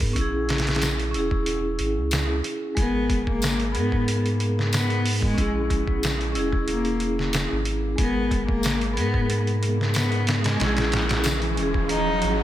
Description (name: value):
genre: trip hop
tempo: 92 BPM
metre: 4/4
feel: swing 53% on 16ths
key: unclear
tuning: A4 = 440 Hz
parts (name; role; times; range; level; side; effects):
- vibraphone with medium hard mallets; accompaniment; 0.0-12.4 s; G#3 to A#4; -27 LUFS; equal; harmonic tremolo, tape echo
- soft dub sub bass; bass; 0.0-12.4 s; E1 to G#2; -26 LUFS; equal; none
- trip hop sampler-style drum kit; drums; 0.0-12.4 s; hi-hat, kick drum, snare drum; -26 LUFS; equal; none
- tambourine; percussion; 0.8-11.4 s; none; -36 LUFS; left 4 dB; none
- warm cello; melody; 2.8-12.4 s; G#3 to D#4; -28 LUFS; left 2 dB; dub echo
- riser; sound effects; 9.6-12.4 s; none; -31 LUFS; right 2 dB; none
room: light reverb, small room ambience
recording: none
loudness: -21 LUFS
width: side -12 dB against mid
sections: 0.0-12.4 A section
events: riser 9.6-12.4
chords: 0.2 A#m7b5; 2.8 G#madd9; 5.4 A#m7b5; 8.0 G#madd9; 10.6 A#m7b5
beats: | 0.16 0.81 1.47 2.12 | 2.77 3.42 4.07 4.73 | 5.38 6.03 6.68 7.33 | 7.99 8.64 9.29 9.94 | 10.60 11.25 11.90